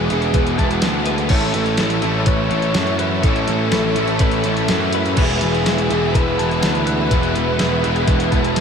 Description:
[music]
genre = rock, shoegaze and dream pop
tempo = 124 BPM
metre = 4/4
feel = straight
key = A major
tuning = A4 = 441 Hz
[part]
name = reedy FM lead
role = melody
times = 0.0-8.6 s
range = G#4 to C#5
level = -25 LUFS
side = equal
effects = chorus, ping-pong delay
[part]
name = string machine, violas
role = sustained chords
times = 0.0-8.6 s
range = B4 to E6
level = -28 LUFS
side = right 1 dB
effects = ensemble chorus
[part]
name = direct-recorded clean electric guitar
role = arpeggios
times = 0.0-8.6 s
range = G#4 to A5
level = -28 LUFS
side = left 6 dB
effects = analog chorus, ping-pong delay
[part]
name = biting overdriven guitar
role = riff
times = 0.0-8.6 s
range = A2 to E4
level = -25 LUFS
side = left 10 dB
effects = analog chorus
[part]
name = overdriven semi-hollow guitar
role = riff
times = 0.0-8.6 s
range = E2 to A3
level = -25 LUFS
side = equal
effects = none
[part]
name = raw garage guitar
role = riff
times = 0.0-8.6 s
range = A2 to E4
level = -24 LUFS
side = right 9 dB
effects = overdrive, reverse reverb
[part]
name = fuzz picked electric bass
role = bass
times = 0.0-8.6 s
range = E1 to F#2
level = -22 LUFS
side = equal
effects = overdrive
[part]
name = clean 12-bit digital drum machine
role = drums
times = 0.1-8.6 s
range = crash cymbal, hi-hat, kick drum, snare drum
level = -21 LUFS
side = equal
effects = none
[sound]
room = moderate huge ambient reverb, RT60 4.8 s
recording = dreamy mix soaked in reverb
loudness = -15 LUFS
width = side -6 dB against mid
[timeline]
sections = 0.0-8.6 A section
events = none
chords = 0.0 Eadd9; 1.3 A; 5.2 Eadd9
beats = 0.34 0.82 | 1.31 1.79 2.27 2.75 | 3.24 3.72 4.20 4.68 | 5.17 5.65 6.14 6.62 | 7.11 7.59 8.08 8.56

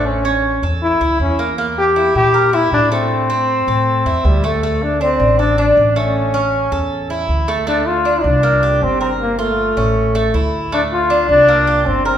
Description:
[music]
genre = latin, Cuban son and guajira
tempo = 158 BPM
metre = 4/4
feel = straight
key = D minor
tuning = A4 = 440 Hz
[part]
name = bright trombone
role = melody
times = 0.0-12.2 s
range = G3 to G4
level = -16 LUFS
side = left 1 dB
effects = none
[part]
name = Cuban tres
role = arpeggios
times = 0.0-12.2 s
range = A3 to Bb4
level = -18 LUFS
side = right 1 dB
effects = none
[part]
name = upright bass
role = bass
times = 0.0-12.2 s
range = G1 to Bb2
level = -20 LUFS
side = equal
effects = none
[sound]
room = wet recital hall reverb, RT60 1.7 s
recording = recorded in a church or concert hall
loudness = -13 LUFS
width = side -9 dB against mid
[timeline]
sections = 0.0-7.7 A section; 7.7-12.2 B section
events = none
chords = 0.1 A; 1.6 Edim; 3.1 Am; 4.6 D5; 6.2 A; 7.7 Dm; 8.4 C5; 9.2 Gm7; 10.0 A; 10.7 Dm; 11.5 C5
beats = | 0.06 0.44 0.82 1.20 | 1.58 1.96 2.35 2.73 | 3.11 3.49 3.87 4.25 | 4.63 5.01 5.39 5.77 | 6.15 6.53 6.91 7.29 | 7.67 8.05 8.43 8.81 | 9.20 9.58 9.96 10.34 | 10.72 11.10 11.48 11.86

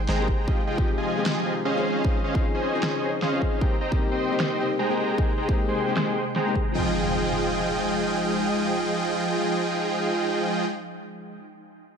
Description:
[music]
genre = future bass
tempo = 153 BPM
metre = 4/4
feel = swing 56% on 16ths, half-time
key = F minor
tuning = A4 = 439 Hz
[part]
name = ethereal airy pad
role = sustained chords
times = 0.0-10.6 s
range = C3 to G5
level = -32 LUFS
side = left 1 dB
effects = ensemble chorus, built-in reverb, phaser, sidechain pumping
[part]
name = long sustained 808-style bass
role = bass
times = 0.0-0.5 s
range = Ab1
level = -27 LUFS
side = equal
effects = sidechain pumping
[part]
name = supersaw chords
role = riff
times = 0.1-10.6 s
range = F3 to C6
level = -25 LUFS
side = right 1 dB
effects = vintage 12-bit sampler grit, sidechain pumping, low-pass filter, dub echo
[part]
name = electronic snare drum and finger snaps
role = drums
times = 0.1-6.4 s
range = none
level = -29 LUFS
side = right 1 dB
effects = low-pass filter on cymbals, studio reverb, low-pass filter on snare
[part]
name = bright grand piano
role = accompaniment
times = 0.2-11.4 s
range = F3 to G5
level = -31 LUFS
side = left 5 dB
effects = sidechain pumping, dub echo
[part]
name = electronic kick drum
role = drums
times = 0.3-6.6 s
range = none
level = -24 LUFS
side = equal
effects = studio reverb
[part]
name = impact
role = sound effects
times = 6.8-11.4 s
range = none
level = -32 LUFS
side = equal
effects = none
[sound]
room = light reverb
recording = none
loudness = -22 LUFS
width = side -6 dB against mid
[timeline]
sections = 0.0-6.8 A section; 6.8-9.9 B section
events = filter sweep on drum 0.0-6.8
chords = 0.5 Fm9; 1.8 Dbmaj9; 3.6 Cm7; 6.8 Fm9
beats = 0.09 | 0.48 0.87 1.26 1.65 | 2.04 2.44 2.83 3.22 | 3.61 4.01 4.40 4.79 | 5.18 5.58 5.97 6.36 | 6.75 7.14 7.54 7.93 | 8.32 8.71 9.10 9.50

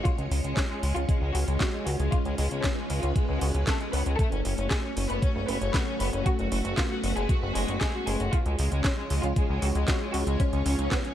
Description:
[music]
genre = italo disco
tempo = 116 BPM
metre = 4/4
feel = straight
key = unclear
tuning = A4 = 440 Hz
[part]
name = rich studio violin section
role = melody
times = 0.0-11.1 s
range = G#3 to B4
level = -32 LUFS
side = left 2 dB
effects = tape echo
[part]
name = string machine, full ensemble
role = sustained chords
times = 0.0-11.1 s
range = G#3 to C#5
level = -33 LUFS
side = equal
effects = ensemble chorus
[part]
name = chorused synth bass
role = bass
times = 0.0-10.9 s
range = F#1 to C#2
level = -28 LUFS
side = equal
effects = tube saturation
[part]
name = electronic kick drum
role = drums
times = 0.1-11.0 s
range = none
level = -26 LUFS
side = equal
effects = none
[part]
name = house drum kit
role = drums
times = 0.1-11.1 s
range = handclaps, hi-hat, snare drum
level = -34 LUFS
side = right 1 dB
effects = none
[sound]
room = little or no reverb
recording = none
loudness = -24 LUFS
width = side -11 dB against mid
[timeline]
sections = 0.0-11.1 A section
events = none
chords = 0.1 C#; 4.2 F#m; 8.3 C#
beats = | 0.05 0.57 1.09 1.60 | 2.12 2.64 3.16 3.67 | 4.19 4.71 5.22 5.74 | 6.26 6.78 7.29 7.81 | 8.33 8.85 9.36 9.88 | 10.40 10.91

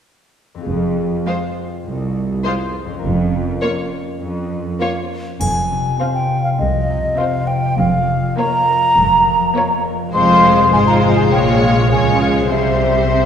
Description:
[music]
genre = cinematic, playful, whimsical film cue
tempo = 101 BPM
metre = 4/4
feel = straight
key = F minor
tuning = A4 = 440 Hz
[part]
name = concert harp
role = arpeggios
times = 0.5-13.3 s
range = F2 to C5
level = -22 LUFS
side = left 4 dB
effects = none
[part]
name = dark studio double bass section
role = bass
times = 0.7-13.3 s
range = F1 to Db2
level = -22 LUFS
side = right 3 dB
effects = none
[part]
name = warm studio cello section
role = bass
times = 0.7-13.3 s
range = C2 to Db3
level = -21 LUFS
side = right 2 dB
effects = none
[part]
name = warm studio violin section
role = melody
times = 1.3-13.3 s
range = C5 to Db5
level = -23 LUFS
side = left 5 dB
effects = none
[part]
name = warm studio violin section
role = second line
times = 1.3-13.3 s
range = C4 to F4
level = -24 LUFS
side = equal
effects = none
[part]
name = rich studio viola section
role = accompaniment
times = 1.3-13.3 s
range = G3 to C4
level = -23 LUFS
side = right 1 dB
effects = none
[part]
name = bright baroque flute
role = second line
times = 5.4-13.3 s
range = Eb5 to C6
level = -16 LUFS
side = equal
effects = none
[part]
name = triangle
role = percussion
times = 5.4-6.6 s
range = none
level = -31 LUFS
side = left 1 dB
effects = none
[sound]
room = wet scoring stage reverb, RT60 1.9 s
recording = heard from further back in the room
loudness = -14 LUFS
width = side -8 dB against mid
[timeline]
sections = 0.7-5.4 A section; 5.4-13.3 B section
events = none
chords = 0.7 Fm; 3.0 Bbm/F; 5.4 Fm; 7.8 Bbm/F; 10.1 Fm; 11.3 Bbm7; 12.5 C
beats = | 0.67 1.26 1.85 2.44 | 3.04 3.62 4.21 4.80 | 5.41 6.01 6.60 7.19 | 7.78 8.38 8.97 9.56 | 10.14 10.73 11.32 11.91 | 12.51 13.10

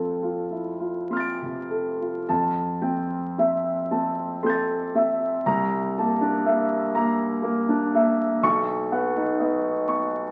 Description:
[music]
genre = classical, impressionist solo piano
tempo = 32-41 BPM (dotted quarters)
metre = 6/8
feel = rubato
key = unclear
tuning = A4 = 440 Hz
[part]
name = warm concert grand piano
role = solo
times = 0.0-10.3 s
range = B1 to D7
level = -24 LUFS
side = equal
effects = none
[sound]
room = wet stone room reverb, RT60 1.4 s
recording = very old 78 rpm record, vinyl crackle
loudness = -24 LUFS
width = mono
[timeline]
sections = 0.0-2.3 A section; 2.3-10.3 B section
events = none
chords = 0.0 F6; 2.3 Fmaj9; 5.5 C13; 8.4 Badd9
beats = 0.51 | 2.29 3.90 | 5.46 6.95 | 8.43 9.91

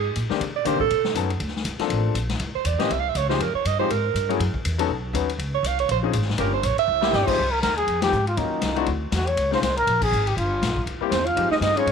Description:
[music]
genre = jazz, small-group swing and bop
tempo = 241 BPM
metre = 4/4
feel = swing 58% on 8ths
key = unclear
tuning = A4 = 440 Hz
[part]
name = warm alto saxophone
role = second line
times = 0.0-7.3, 11.1-11.9 s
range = C4 to F5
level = -24 LUFS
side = right 12 dB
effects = none
[part]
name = upright bass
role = bass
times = 0.0-11.9 s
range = G1 to D3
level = -26 LUFS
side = equal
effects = none
[part]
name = swinging big-band drum kit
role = drums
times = 0.2-11.9 s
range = crash cymbal, hi-hat, kick drum, ride cymbal, snare drum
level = -30 LUFS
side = left 5 dB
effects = none
[part]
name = clear baby grand piano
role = accompaniment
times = 0.3-11.9 s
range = Eb3 to B4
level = -27 LUFS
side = left 12 dB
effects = none
[part]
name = breathy trumpet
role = melody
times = 7.1-11.9 s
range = Eb4 to F5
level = -23 LUFS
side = left 1 dB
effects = none
[sound]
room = light reverb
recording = 1960s-style stereo with parts hard left and right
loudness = -20 LUFS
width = side -6 dB against mid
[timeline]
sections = 0.0-7.4 A section; 7.4-11.9 B section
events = alto saxophone solo 0.0-7.4; drum fill 6.9; band accent 8.0, 10.0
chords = 0.4 Cm9; 0.9 B9; 1.4 Bbmaj9; 2.4 C7b9; 3.4 Fmadd9; 4.4 Gbm7; 4.9 Badd9; 5.4 Dbmaj7(no3); 6.4 Gm7b5; 6.9 C7; 7.4 Fm7; 8.4 Ebm7; 8.9 Dsus2; 9.4 Dbmaj7(no3); 10.4 Gm7; 10.9 C7; 11.4 Fm7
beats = 0.16 | 0.41 0.66 0.91 1.16 | 1.40 1.65 1.90 2.15 | 2.40 2.65 2.90 3.15 | 3.40 3.65 3.89 4.14 | 4.39 4.64 4.89 5.14 | 5.39 5.64 5.89 6.14 | 6.38 6.63 6.88 7.13 | 7.38 7.63 7.88 8.13 | 8.38 8.63 8.88 9.13 | 9.38 9.62 9.87 10.12 | 10.37 10.62 10.87 11.12 | 11.37 11.62 11.87

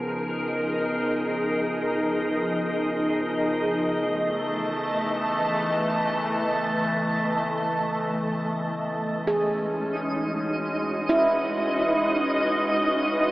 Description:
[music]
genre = ambient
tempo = free time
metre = none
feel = none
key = C# minor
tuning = A4 = 439 Hz
[part]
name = glassy FM pad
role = sustained chords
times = 0.0-13.3 s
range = E3 to A5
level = -24 LUFS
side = equal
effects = ensemble chorus, built-in reverb
[part]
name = analog drone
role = drone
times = 0.0-9.4 s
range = C#3 to B3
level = -35 LUFS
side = equal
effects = chorus
[part]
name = handpan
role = arpeggios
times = 9.3-13.3 s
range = E4 to G#4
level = -26 LUFS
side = right 1 dB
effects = diffuse ambient delay
[part]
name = twinkling granular texture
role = texture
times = 9.9-13.3 s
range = D#4 to D#5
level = -26 LUFS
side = right 1 dB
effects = built-in reverb
[sound]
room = wet huge ambient reverb, RT60 7.7 s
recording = AM radio sound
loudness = -23 LUFS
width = side -18 dB against mid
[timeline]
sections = 0.0-9.3 A section; 9.3-13.3 B section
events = none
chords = 0.0 Fm7; 3.8 A5; 9.3 C#m7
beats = free time

